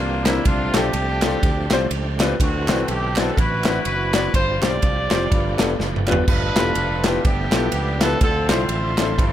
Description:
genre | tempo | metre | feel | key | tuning
uptempo gospel | 124 BPM | 4/4 | swing 59% on 8ths | unclear | A4 = 440 Hz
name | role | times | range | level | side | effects
warm horn section | melody | 0.0-9.3 s | A3 to D5 | -24 LUFS | equal | none
clear baby grand piano | accompaniment | 0.0-9.3 s | G2 to D5 | -24 LUFS | left 4 dB | none
bright tonewheel organ | sustained chords | 0.0-9.3 s | E3 to E5 | -30 LUFS | right 3 dB | fast rotary speaker, overdrive, chorus vibrato
fingered electric bass | bass | 0.0-9.3 s | E1 to D2 | -25 LUFS | right 1 dB | none
modern studio drum kit | drums | 0.3-9.3 s | crash cymbal, kick drum, ride cymbal, snare drum, toms | -21 LUFS | equal | none
group handclap | percussion | 0.3-9.1 s | none | -29 LUFS | right 6 dB | none
room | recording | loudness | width
little or no reverb | none | -17 LUFS | side -11 dB against mid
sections
0.0-9.3 A section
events
drum fill 5.8-6.3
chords
0.5 F69; 2.4 D13; 4.3 G7sus4; 5.3 G9; 6.3 G13; 8.2 Dm9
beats
| 0.46 0.94 1.43 1.91 | 2.40 2.88 3.37 3.85 | 4.34 4.82 5.31 5.79 | 6.28 6.76 7.25 7.73 | 8.21 8.70 9.18

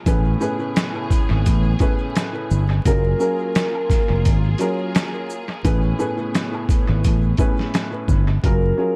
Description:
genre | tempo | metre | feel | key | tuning
hip hop, boom-bap hip-hop | 86 BPM | 4/4 | swing 55% on 16ths | unclear | A4 = 440 Hz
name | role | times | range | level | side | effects
warm studio string section | sustained chords | 0.0-8.4 s | C#3 to G#4 | -34 LUFS | equal | high-pass filter, low-pass filter
dark upright piano | accompaniment | 0.1-9.0 s | A2 to B4 | -27 LUFS | equal | cassette tape, high-pass filter, low-pass filter, analog delay
fingered electric bass | bass | 0.1-8.7 s | E#1 to A1 | -21 LUFS | equal | none
boom bap sampler-style drum kit | drums | 0.1-8.6 s | hi-hat, kick drum, shaker, snare drum | -23 LUFS | equal | analog delay
maracas and woodblock | percussion | 0.1-8.3 s | none | -43 LUFS | equal | analog delay
vibraphone with soft mallets | melody | 2.9-9.0 s | A#4 to C#5 | -27 LUFS | equal | high-pass filter, low-pass filter, analog delay
room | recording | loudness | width
studio reverb | echo-heavy mix, vinyl crackle | -20 LUFS | mono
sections
0.0-8.4 A section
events
none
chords
0.1 Amaj9; 2.9 F#maj9; 5.6 Amaj9; 8.4 F#maj9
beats
| 0.06 0.76 1.46 2.16 | 2.85 3.55 4.25 4.95 | 5.64 6.34 7.04 7.74 | 8.44

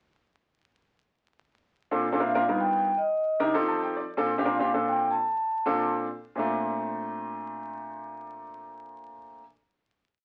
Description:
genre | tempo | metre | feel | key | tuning
jazz | 212 BPM | 4/4 | straight | Bb major | A4 = 445 Hz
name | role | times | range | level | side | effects
warm grand piano | accompaniment | 1.9-9.4 s | G2 to A5 | -30 LUFS | equal | none
vibraphone with soft mallets | melody | 2.2-9.4 s | Eb5 to Bb5 | -31 LUFS | equal | none
room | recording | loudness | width
wet studio ambience, RT60 0.5 s | very old 78 rpm record, vinyl crackle | -27 LUFS | mono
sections
1.9-6.4 A section; 6.4-8.6 final chord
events
grand piano fill 3.5-4.1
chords
1.9 Bbmaj9; 2.4 G7alt; 3.0 Cm9; 3.5 F9; 4.1 Bbmaj9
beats
| 1.85 2.13 2.42 2.70 | 2.98 3.26 3.54 3.83 | 4.11 4.39 4.67 4.95 | 5.24 5.52 5.80 6.09 | 6.37 6.65 6.94 7.22 | 7.50 7.79 8.07 8.35

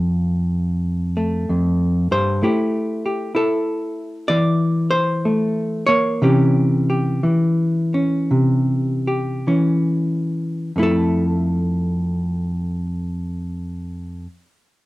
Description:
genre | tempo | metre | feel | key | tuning
solo jazz | 44-65 BPM | 4/4 | swing 66% on 8ths, rubato | F major | A4 = 440 Hz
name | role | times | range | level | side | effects
hollow-body jazz guitar | solo | 0.0-14.3 s | F2 to D5 | -18 LUFS | equal | none
room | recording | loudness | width
moderate club reverb, RT60 0.5 s | dark, warm production | -17 LUFS | side -18 dB against mid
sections
0.0-2.4 A section; 2.4-10.8 B section; 10.8-14.9 C section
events
slowing down 2.4-10.8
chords
0.0 F; 2.4 Am7; 6.2 C; 10.8 Fmaj7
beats
0.54 1.49 | 2.43 3.35 4.29 5.23 | 6.21 7.23 8.30 9.47 | 10.76 12.08 13.36

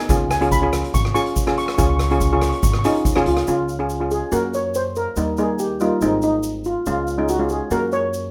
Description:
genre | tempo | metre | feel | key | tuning
calypso | 142 BPM | 4/4 | straight | Db mixolydian, Db major from 3.5 s | A4 = 440 Hz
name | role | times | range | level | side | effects
steel pan | melody | 0.0-8.3 s | Eb4 to Db6 | -25 LUFS | equal | slapback echo
steel pan | accompaniment | 0.1-8.3 s | G3 to Ab4 | -24 LUFS | equal | none
upright bass | bass | 0.1-8.3 s | Ab1 to Gb2 | -28 LUFS | equal | none
street-band drum kit | drums | 0.1-3.5 s | hi-hat, kick drum, rim click | -25 LUFS | equal | none
egg shaker | percussion | 0.1-8.2 s | none | -37 LUFS | equal | none
room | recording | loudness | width
moderate studio reverb, RT60 0.6 s | rough home demo mix | -20 LUFS | mono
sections
0.0-3.5 A section; 3.5-8.3 B section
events
none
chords
0.1 Db; 1.8 Dbadd9; 3.5 Db; 4.3 Gb; 5.2 Eb; 6.0 Ab; 6.9 Db; 7.7 Gb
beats
| 0.09 0.52 0.94 1.36 | 1.78 2.21 2.63 3.05 | 3.48 3.90 4.32 4.75 | 5.17 5.59 6.02 6.44 | 6.86 7.29 7.71 8.13

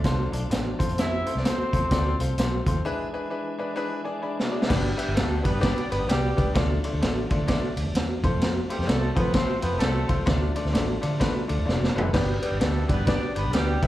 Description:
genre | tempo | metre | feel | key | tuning
uptempo 1960s-style soul | 129 BPM | 4/4 | swing 62% on 8ths | G mixolydian | A4 = 440 Hz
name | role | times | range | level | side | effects
bright upright piano | accompaniment | 0.0-13.9 s | A3 to B5 | -30 LUFS | left 3 dB | slapback echo
tonewheel organ | sustained chords | 0.0-13.9 s | E3 to D4 | -37 LUFS | right 2 dB | none
vintage muted fingered electric bass | bass | 0.0-13.9 s | F1 to F3 | -27 LUFS | equal | none
raw garage drum kit | drums | 0.0-13.9 s | crash cymbal, hi-hat, kick drum, ride cymbal, snare drum, toms | -25 LUFS | equal | slapback echo
clear horn section | second line | 1.0-2.2, 5.0-13.9 s | G3 to E5 | -30 LUFS | right 1 dB | slapback echo
room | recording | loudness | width
light reverb, small room ambience | live gig heard through the venue's PA, club reverb | -22 LUFS | side -14 dB against mid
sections
0.0-4.7 A section; 4.7-13.9 B section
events
upright piano fill 0.0-1.0, 3.3-4.7; break 2.8-4.7; drum fill 4.2-4.7, 11.7-12.1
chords
0.0 Dm; 0.7 F; 2.8 E7; 4.7 G; 6.6 Dm; 8.2 F; 10.3 Dm; 12.1 G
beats
0.04 0.51 | 0.97 1.44 1.91 2.37 | 2.84 3.30 3.77 4.23 | 4.70 5.16 5.63 6.09 | 6.56 7.02 7.49 7.95 | 8.41 8.88 9.35 9.81 | 10.28 10.74 11.21 11.67 | 12.14 12.61 13.07 13.54

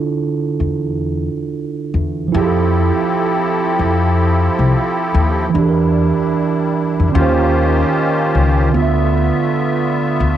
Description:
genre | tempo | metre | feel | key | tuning
lo-fi hip hop | 75 BPM | 4/4 | swing 63% on 16ths | unclear | A4 = 439 Hz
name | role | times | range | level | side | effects
mellow tine electric piano | accompaniment | 0.0-10.4 s | D3 to E5 | -17 LUFS | right 5 dB | fast stereo tremolo, cassette tape, low-pass filter
upright bass | bass | 0.6-10.4 s | C2 to F2 | -16 LUFS | left 2 dB | none
musette accordion | sustained chords | 2.3-10.4 s | D3 to E5 | -19 LUFS | left 2 dB | low-pass filter, cassette tape
room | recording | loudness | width
moderate small room reverb, RT60 0.6 s | home recording on cassette | -14 LUFS | side -10 dB against mid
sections
0.0-2.3 A section; 2.3-10.4 B section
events
none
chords
0.0 Dm7; 2.3 Fmaj9; 5.5 Em7b5; 7.1 Eb13; 8.7 Dm69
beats
0.74 1.54 | 2.34 3.14 3.94 4.74 | 5.54 6.34 7.14 7.94 | 8.74 9.54 10.34

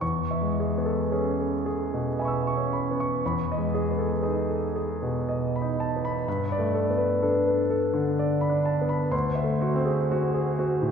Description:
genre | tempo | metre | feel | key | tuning
classical, impressionist solo piano | 51-64 BPM | 3/4 | rubato | E major | A4 = 439 Hz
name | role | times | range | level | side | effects
clear concert grand piano | solo | 0.0-10.9 s | D2 to E6 | -24 LUFS | equal | none
room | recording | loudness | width
wet concert hall reverb, RT60 2.3 s | recorded in a church or concert hall | -24 LUFS | side -6 dB against mid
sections
0.0-10.9 A section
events
none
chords
0.0 E6; 3.2 G#m/E; 6.3 Gadd9; 9.1 D9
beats
| 0.02 1.13 2.19 | 3.22 4.24 5.27 | 6.27 7.24 8.19 | 9.13 10.09

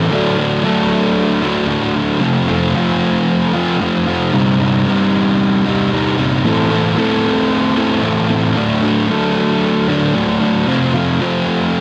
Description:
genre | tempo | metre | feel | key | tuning
rock | 113 BPM | 4/4 | straight | unclear | A4 = 439 Hz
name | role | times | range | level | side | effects
fuzz guitar | solo | 0.0-11.8 s | C2 to A4 | -15 LUFS | equal | distortion, digital delay
room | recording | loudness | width
light reverb | none | -15 LUFS | mono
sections
0.0-11.8 A section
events
none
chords
0.1 D; 2.2 F; 4.3 Cm; 6.5 Am; 8.6 D; 10.7 F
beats
| 0.11 0.64 1.17 1.69 | 2.22 2.75 3.28 3.81 | 4.34 4.87 5.40 5.92 | 6.45 6.98 7.51 8.04 | 8.57 9.10 9.63 10.16 | 10.69 11.22 11.75

